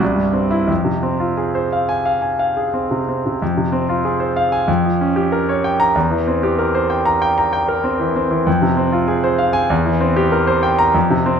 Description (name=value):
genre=classical, virtuoso piano study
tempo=86-97 BPM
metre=4/4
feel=rubato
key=F minor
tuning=A4 = 440 Hz
part: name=bright concert grand piano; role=solo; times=0.0-11.4 s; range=C2 to Bb5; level=-15 LUFS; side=equal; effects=none
room=wet recital hall reverb, RT60 1.7 s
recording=none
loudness=-15 LUFS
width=side -7 dB against mid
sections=0.0-3.4 A section; 3.4-11.4 A section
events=none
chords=0.0 C; 0.7 Fm; 4.7 Gm7b5/F; 6.0 C7/E; 8.5 Fm; 9.7 C7/E